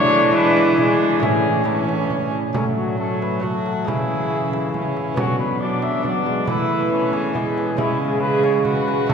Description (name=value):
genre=classical, renaissance-style consort dance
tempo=137 BPM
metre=3/4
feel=straight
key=unclear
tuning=A4 = 440 Hz
part: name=mellow cornet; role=melody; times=0.0-9.1 s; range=C#4 to E5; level=-24 LUFS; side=left 3 dB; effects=none
part: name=warm viola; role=second line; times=0.0-9.1 s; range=A3 to G#4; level=-24 LUFS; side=right 4 dB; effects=none
part: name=lute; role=accompaniment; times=0.0-9.1 s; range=A2 to A4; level=-27 LUFS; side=left 1 dB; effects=none
part: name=warm trombone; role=accompaniment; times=0.0-9.1 s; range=E3 to A3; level=-26 LUFS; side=equal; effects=none
part: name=warm cello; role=bass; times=0.0-9.1 s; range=A2 to F#3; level=-23 LUFS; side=equal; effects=none
part: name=frame drum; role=percussion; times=0.6-9.1 s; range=none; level=-28 LUFS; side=right 1 dB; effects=none
room=wet cathedral reverb, RT60 6.2 s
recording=recorded in a church or concert hall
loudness=-17 LUFS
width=side -6 dB against mid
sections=0.0-2.6 A section; 2.6-9.1 B section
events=none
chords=0.3 E7; 1.2 A; 2.6 F#m; 3.9 C#m; 5.2 Bm; 6.5 Esus4; 7.4 E; 7.8 C#m